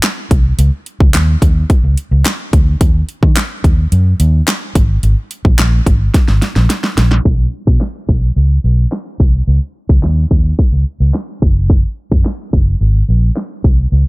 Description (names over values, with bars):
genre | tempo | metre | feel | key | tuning
dance-pop | 108 BPM | 4/4 | straight | unclear | A4 = 439 Hz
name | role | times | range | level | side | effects
pop drum kit | drums | 0.0-13.8 s | handclaps, hi-hat, kick drum, snare drum | -12 LUFS | equal | none
vintage muted fingered electric bass | bass | 0.3-14.0 s | F#1 to D#3 | -12 LUFS | equal | sidechain pumping
room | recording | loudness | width
little or no reverb | low-pass filter | -10 LUFS | side -23 dB against mid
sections
0.0-7.3 A section; 7.3-14.1 B section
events
drum fill 6.1-7.3; filter sweep 7.3-14.1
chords
none